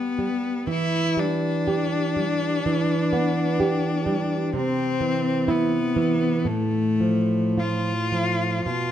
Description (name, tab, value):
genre	romantic duo for cello and classical guitar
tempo	52-65 BPM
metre	4/4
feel	rubato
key	E minor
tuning	A4 = 439 Hz
part	rich cello	melody	0.0-8.9 s	A3 to F4	-24 LUFS	left 4 dB	none
part	nylon-string guitar	accompaniment	0.0-8.9 s	A2 to G4	-24 LUFS	right 3 dB	none
room	moderate recital hall reverb, RT60 1.4 s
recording	none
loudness	-21 LUFS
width	side -10 dB against mid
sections	0.0-8.9 A section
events	none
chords	0.0 Em; 4.5 C; 6.5 F/A